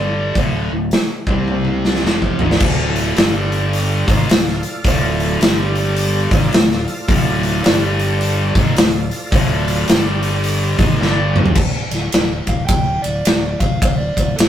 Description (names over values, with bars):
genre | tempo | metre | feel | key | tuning
blues rock power trio and southern rock | 107 BPM | 4/4 | swing 62% on 8ths | D minor | A4 = 440 Hz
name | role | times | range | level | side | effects
overdriven slide guitar | melody | 0.0-0.4, 12.5-14.5 s | A4 to G5 | -23 LUFS | right 1 dB | none
tight distorted guitar | riff | 0.0-11.6 s | D2 to C4 | -20 LUFS | equal | distortion
growling fingered electric bass | bass | 0.0-14.5 s | D1 to C2 | -20 LUFS | equal | overdrive
big rock drum kit | drums | 0.4-14.5 s | crash cymbal, hi-hat, kick drum, ride cymbal, snare drum, toms | -16 LUFS | equal | none
overdriven tonewheel organ | sustained chords | 2.6-11.6 s | D4 to G5 | -28 LUFS | right 2 dB | slow rotary speaker, chorus vibrato
room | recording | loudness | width
little or no reverb | rough rehearsal-room recording, tube saturation | -14 LUFS | side -10 dB against mid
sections
0.0-2.6 A section; 2.6-11.6 B section; 11.6-14.5 C section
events
drum fill 1.5-2.6, 11.0-11.6; electric slide guitar solo 11.6-14.5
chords
0.4 D5; 1.2 C5; 2.1 Fm7; 2.6 Dm; 3.2 G5; 4.0 Dm; 5.4 G5; 6.2 Dm; 7.6 G5; 8.5 Dm; 9.9 G5; 10.7 G#5; 11.0 G5; 11.6 N.C.